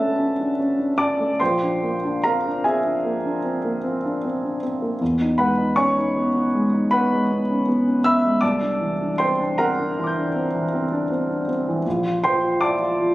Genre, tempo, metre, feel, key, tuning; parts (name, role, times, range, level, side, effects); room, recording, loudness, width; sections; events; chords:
classical, impressionist solo piano; 52 BPM (dotted quarters); 9/8; uneven beats, rubato; A4 = 440 Hz
warm grand piano; solo; 0.0-13.1 s; Bb1 to G6; -19 LUFS; equal
moderate recital hall reverb, RT60 1.4 s; recorded on a phone in the room, studio reverb; -19 LUFS; side -17 dB against mid
0.0-13.1 A section
0.0 Dmaj7; 1.4 Bb9; 5.0 Emaj7; 8.4 C9; 11.9 Bbmaj7